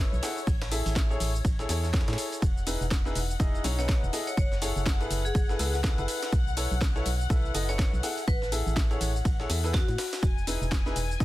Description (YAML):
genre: piano house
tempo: 123 BPM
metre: 4/4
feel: swing 59% on 16ths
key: E major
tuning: A4 = 439 Hz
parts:
  - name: warm studio string section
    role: sustained chords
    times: 0.0-11.2 s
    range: C#5 to G#5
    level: -39 LUFS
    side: left 7 dB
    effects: sidechain pumping
  - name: clear concert grand piano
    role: riff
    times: 0.0-11.2 s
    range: D#4 to F#5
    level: -34 LUFS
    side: equal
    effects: sidechain pumping, digital delay
  - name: organ-like FM bass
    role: bass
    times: 0.0-11.2 s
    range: E1 to A2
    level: -30 LUFS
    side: equal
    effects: sidechain pumping
  - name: house drum kit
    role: drums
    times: 0.1-11.2 s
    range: hi-hat, shaker, snare drum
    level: -35 LUFS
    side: left 1 dB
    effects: overdrive
  - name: breakbeat sampler-style drum kit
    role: drums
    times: 0.2-11.2 s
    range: hi-hat, ride cymbal, snare drum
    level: -41 LUFS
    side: right 1 dB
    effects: sidechain pumping on cymbals, high-pass filter on cymbals, high-pass filter on snare, sidechain pumping on hats, high-pass filter on hats, high-pass filter on room
  - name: electronic kick drum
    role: drums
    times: 0.5-11.2 s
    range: none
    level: -26 LUFS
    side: equal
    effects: overdrive
  - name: vibraphone with hard mallets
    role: melody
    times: 3.8-10.2 s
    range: F#4 to C#5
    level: -38 LUFS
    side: left 1 dB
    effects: digital delay
room: little or no reverb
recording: dense, heavily limited modern master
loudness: -25 LUFS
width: side -16 dB against mid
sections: 0.0-11.2 A section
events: none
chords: 0.2 Amaj7; 2.4 Emaj7; 4.1 F#m11; 6.3 B9sus4; 8.0 Amaj7; 10.2 Emaj7